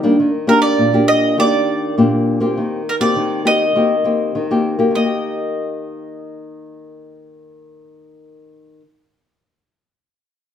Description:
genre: samba.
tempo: 101 BPM.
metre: 4/4.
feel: straight.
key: Eb major.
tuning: A4 = 438 Hz.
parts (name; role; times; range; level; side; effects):
nylon-string guitar; accompaniment; 0.0-8.9 s; Bb2 to G4; -16 LUFS; left 1 dB; none.
mandolin; melody; 0.5-8.8 s; Bb4 to Eb5; -17 LUFS; right 1 dB; none.
room: moderate large studio reverb, RT60 1.1 s.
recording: none.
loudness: -14 LUFS.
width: side -9 dB against mid.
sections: 0.2-5.0 A section; 5.0-7.3 B section.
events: none.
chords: 0.2 Ebmaj7; 2.6 Cm7/Eb; 5.0 Eb.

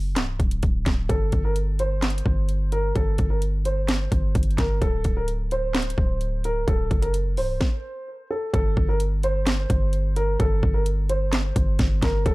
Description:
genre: hip hop, trap.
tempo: 129 BPM.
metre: 4/4.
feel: half-time.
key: G harmonic minor.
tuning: A4 = 441 Hz.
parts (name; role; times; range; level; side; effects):
hard-hitting 808-style bass; bass; 0.0-12.3 s; C1 to G1; -24 LUFS; equal; none.
trap drum kit; drums; 0.2-12.3 s; handclaps, hi-hat, kick drum, snare drum; -24 LUFS; equal; none.
dark concert grand piano; melody; 1.1-12.3 s; A4 to C5; -28 LUFS; equal; tape echo.
room: little or no reverb.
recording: dark, warm production.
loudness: -21 LUFS.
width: side -21 dB against mid.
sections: 0.0-8.5 A section; 8.5-12.3 B section.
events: break 0.0-1.1; stop 7.6-8.5.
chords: 0.0 D7; 1.1 Gsus4; 4.8 D7; 8.5 Gsus4.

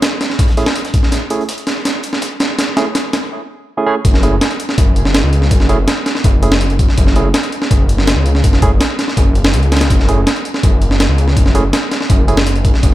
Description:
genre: drum and bass, jungle.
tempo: 164 BPM.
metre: 4/4.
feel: straight.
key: F# minor.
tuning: A4 = 440 Hz.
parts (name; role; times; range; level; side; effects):
breakbeat sampler-style drum kit; drums; 0.0-12.9 s; hi-hat, kick drum, snare drum; -13 LUFS; equal; none.
crunchy breakbeat drum kit; drums; 0.0-3.3 s; hi-hat, snare drum; -31 LUFS; equal; none.
barky tine electric piano; stabs; 0.6-12.4 s; A3 to G#4; -21 LUFS; right 3 dB; overdrive, dub echo.
detuned saw bass; bass; 4.0-12.9 s; F#1 to C#2; -14 LUFS; equal; none.
room: small room ambience.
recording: none.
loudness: -11 LUFS.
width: side -15 dB against mid.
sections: 0.0-4.0 A section; 4.0-12.9 B section.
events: build-up 0.0-4.0; drum fill 1.1-3.3; break 3.3-4.0; drop 4.0-12.9.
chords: 0.0 Amaj7; 4.0 F#5.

